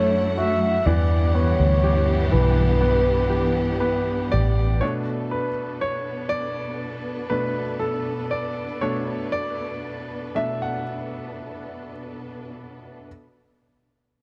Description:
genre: pop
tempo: 60 BPM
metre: 4/4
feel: straight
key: B minor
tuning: A4 = 439 Hz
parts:
  - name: mellow horn-like synth lead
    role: melody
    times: 0.0-4.3 s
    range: B4 to E5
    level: -26 LUFS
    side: equal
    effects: chorus, slapback echo
  - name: clear studio cello section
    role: second line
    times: 0.0-4.8 s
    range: F#2 to D4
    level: -29 LUFS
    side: equal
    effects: none
  - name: clear concert grand piano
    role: accompaniment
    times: 0.0-13.1 s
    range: B2 to F#5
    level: -29 LUFS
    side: equal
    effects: none
  - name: warm studio string section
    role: sustained chords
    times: 0.0-13.0 s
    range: B2 to F#5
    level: -34 LUFS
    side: equal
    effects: none
  - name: vintage muted fingered electric bass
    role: bass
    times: 0.0-4.8 s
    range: A1 to E2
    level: -23 LUFS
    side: equal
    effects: none
room: light reverb, studio reverb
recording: dry, close 1970s-style studio recording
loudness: -23 LUFS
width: mono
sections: 0.0-4.8 A section; 4.8-13.1 B section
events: slowing down 4.8-13.1; grand piano solo 4.8-13.1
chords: 0.0 Dmaj7; 0.9 Em7; 4.8 Bm7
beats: | 0.86 1.84 2.83 3.83 | 4.83 5.82 6.81 7.80 | 8.80 9.83 10.87 11.95

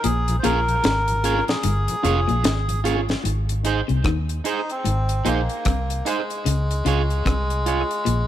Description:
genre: roots reggae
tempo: 75 BPM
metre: 4/4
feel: swing 60% on 16ths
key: Ab major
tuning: A4 = 440 Hz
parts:
  - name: melodica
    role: melody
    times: 0.0-8.3 s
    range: Ab3 to C5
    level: -25 LUFS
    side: equal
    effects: tape echo
  - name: electric guitar at the edge of break-up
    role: riff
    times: 0.0-8.2 s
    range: F2 to Eb3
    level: -28 LUFS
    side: left 7 dB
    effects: none
  - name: deep reggae drum kit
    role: drums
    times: 0.0-8.3 s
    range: hi-hat, kick drum, rim click, snare drum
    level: -26 LUFS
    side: left 1 dB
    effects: analog delay
  - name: vintage muted fingered electric bass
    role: bass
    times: 0.1-8.3 s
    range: F1 to Eb2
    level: -23 LUFS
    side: equal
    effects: none
  - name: mellow tonewheel organ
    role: accompaniment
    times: 0.3-3.2 s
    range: Bb2 to Ab4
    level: -30 LUFS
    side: left 2 dB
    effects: chorus vibrato, slow rotary speaker
  - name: electric guitar at the edge of break-up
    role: accompaniment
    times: 0.4-7.8 s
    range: Eb4 to Db5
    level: -27 LUFS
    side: right 8 dB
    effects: tape echo
room: light reverb, studio reverb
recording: none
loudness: -19 LUFS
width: side -12 dB against mid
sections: 0.0-3.2 A section; 3.2-8.3 B section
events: break 0.0-3.2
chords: 0.0 Bbm7; 3.2 Ab; 6.5 Db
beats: | 0.04 0.84 1.64 2.44 | 3.25 4.05 4.85 5.65 | 6.46 7.26 8.06

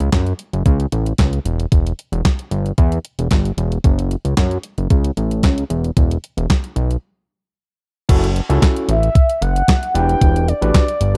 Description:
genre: early-eighties boogie funk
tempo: 113 BPM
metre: 4/4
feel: straight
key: unclear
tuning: A4 = 441 Hz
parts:
  - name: fat analog bass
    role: bass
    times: 0.0-11.2 s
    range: E1 to F#2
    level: -20 LUFS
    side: equal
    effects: none
  - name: clean 12-bit digital drum machine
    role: drums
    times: 0.0-11.1 s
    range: crash cymbal, handclaps, hi-hat, kick drum, snare drum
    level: -17 LUFS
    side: equal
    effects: none
  - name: overdriven tine electric piano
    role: accompaniment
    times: 8.1-11.2 s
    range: C#4 to B4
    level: -24 LUFS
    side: equal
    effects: none
  - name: mellow horn-like synth lead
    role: melody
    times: 8.9-11.2 s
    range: D5 to G5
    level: -22 LUFS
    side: equal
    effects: chorus, phaser
room: digital ambience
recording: dark, warm production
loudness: -17 LUFS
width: mono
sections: 0.0-8.1 A section; 8.1-11.2 B section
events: break 7.0-8.1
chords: 0.0 F#m; 1.5 Em; 3.8 F#m; 5.7 E5; 7.0 N.C.; 8.1 F#m7; 9.9 Em9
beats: 0.13 0.66 1.19 | 1.72 2.25 2.78 3.31 | 3.84 4.37 4.91 5.44 | 5.97 6.50 7.03 7.56 | 8.09 8.62 9.15 9.68 | 10.21 10.75

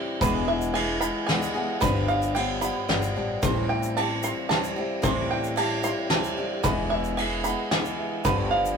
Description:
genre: indie folk with a building arrangement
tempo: 112 BPM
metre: 3/4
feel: straight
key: unclear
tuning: A4 = 444 Hz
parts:
  - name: clear grand piano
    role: accompaniment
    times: 0.0-8.8 s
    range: G1 to A5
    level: -35 LUFS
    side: right 2 dB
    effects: none
  - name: picked steel-string acoustic guitar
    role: accompaniment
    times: 0.0-8.8 s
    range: E2 to G#4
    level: -29 LUFS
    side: left 3 dB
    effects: none
  - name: bluegrass banjo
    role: arpeggios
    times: 0.0-8.8 s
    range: B4 to C6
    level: -28 LUFS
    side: right 4 dB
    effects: none
  - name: upright bass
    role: bass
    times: 0.2-8.8 s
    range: E1 to A1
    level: -32 LUFS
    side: equal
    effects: none
  - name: soft brush drum kit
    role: drums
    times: 0.2-8.4 s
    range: kick drum, ride cymbal, snare drum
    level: -28 LUFS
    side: left 1 dB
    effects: none
  - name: tube shaker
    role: percussion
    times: 0.2-8.8 s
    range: none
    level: -39 LUFS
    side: left 6 dB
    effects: none
room: moderate booth ambience, RT60 0.2 s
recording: rough rehearsal-room recording, warm saturation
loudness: -23 LUFS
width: side -6 dB against mid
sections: 0.0-8.8 A section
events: grand piano fill 0.0, 1.8-3.4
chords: 0.2 E; 1.8 G7; 3.4 Am7; 6.6 E; 8.3 G7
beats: | 0.22 0.75 1.29 | 1.83 2.36 2.90 | 3.43 3.97 4.50 | 5.04 5.58 6.11 | 6.65 7.18 7.72 | 8.25

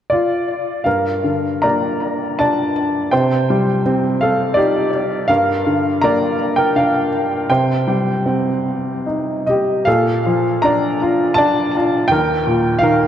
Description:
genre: classical, lyrical solo piano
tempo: 71-86 BPM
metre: 3/4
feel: rubato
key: G minor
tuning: A4 = 439 Hz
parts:
  - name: bright upright piano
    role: solo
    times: 0.1-13.1 s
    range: Eb2 to Bb5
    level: -14 LUFS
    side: equal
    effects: ping-pong delay
room: wet church reverb, RT60 2.9 s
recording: dreamy mix soaked in reverb, cassette tape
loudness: -15 LUFS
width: side -10 dB against mid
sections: 0.9-9.9 A section; 9.9-13.1 B section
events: none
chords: 0.0 N.C.; 0.9 Gm7; 3.1 Cmadd9; 5.3 Gm7; 7.5 Cm; 9.9 Bbmaj7; 12.1 Ebadd9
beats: 0.10 | 0.85 1.63 2.38 | 3.12 3.86 4.57 | 5.29 6.02 6.75 | 7.49 8.25 9.06 | 9.87 10.62 11.37 | 12.10 12.82

